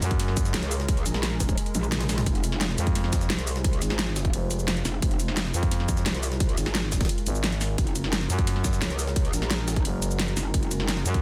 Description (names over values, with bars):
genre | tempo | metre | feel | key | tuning
dark technical drum and bass | 174 BPM | 4/4 | straight | F phrygian | A4 = 438 Hz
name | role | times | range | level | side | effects
deep dark ambient pad | sustained chords | 0.0-11.2 s | Ab3 to C5 | -39 LUFS | equal | chorus, built-in reverb, sidechain pumping
growling FM bass | bass | 0.0-0.5, 2.8-11.2 s | F1 to Gb2 | -29 LUFS | equal | tube saturation
dubstep drum kit | drums | 0.0-11.2 s | hi-hat, shaker, snare drum, toms | -32 LUFS | equal | studio reverb
jungle sampler-style drum kit | drums | 0.0-11.2 s | ride cymbal, snare drum | -40 LUFS | equal | none
electronic kick drum | drums | 0.1-11.2 s | none | -29 LUFS | equal | studio reverb
metallic wobble bass | bass | 0.5-11.0 s | F1 to Db2 | -31 LUFS | equal | chorus, tube saturation
room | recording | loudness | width
little or no reverb | dense, heavily limited modern master | -26 LUFS | mono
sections
0.0-11.2 A section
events
drum fill 1.7-2.3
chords
0.0 Gbadd9; 2.3 Fm; 7.8 Gbadd9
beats
0.20 0.54 | 0.89 1.23 1.57 1.92 | 2.27 2.61 2.95 3.30 | 3.64 3.99 4.33 4.68 | 5.02 5.37 5.71 6.06 | 6.40 6.75 7.09 7.44 | 7.78 8.13 8.47 8.82 | 9.16 9.51 9.85 10.20 | 10.54 10.88